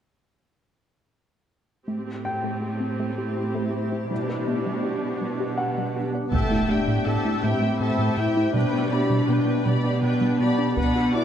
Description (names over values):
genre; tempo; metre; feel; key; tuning
cinematic, hybrid orchestral and electronic film score; 54 BPM (dotted quarters); 6/8; straight; A dorian; A4 = 436 Hz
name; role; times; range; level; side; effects
rich symphonic viola section; accompaniment; 1.9-11.2 s; C4 to G5; -31 LUFS; right 2 dB; none
granular cloud pad; sustained chords; 2.6-11.2 s; A3 to D5; -30 LUFS; equal; built-in reverb
tight sequenced synth; arpeggios; 1.9-11.1 s; G3 to G4; -32 LUFS; left 1 dB; chorus, tape echo
clear symphonic cello section; bass; 1.9-11.2 s; A2 to B2; -29 LUFS; right 2 dB; none
clear baby grand piano; texture; 2.2-10.8 s; E5 to G5; -34 LUFS; left 1 dB; tape echo
rich symphonic violin section; second line; 6.3-11.2 s; B4 to D6; -31 LUFS; left 3 dB; none
mellow French horn section; sustained chords; 6.3-11.2 s; A3 to E4; -25 LUFS; left 3 dB; none
smooth synth bass; riff; 6.3-11.2 s; A2 to B3; -26 LUFS; right 2 dB; none
taiko ensemble; drums; 6.3-11.2 s; none; -30 LUFS; equal; none
impact; sound effects; 6.3-8.5 s; none; -31 LUFS; equal; none
room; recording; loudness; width
wet scoring stage reverb, RT60 1.5 s; none; -22 LUFS; side -9 dB against mid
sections
1.9-6.3 A section; 6.3-11.2 B section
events
impact 6.3-8.6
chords
1.9 Am7; 4.1 G/B; 6.3 Am7; 8.6 G/B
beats
| 1.88 2.99 | 4.11 5.22 | 6.33 7.44 | 8.55 9.66 | 10.77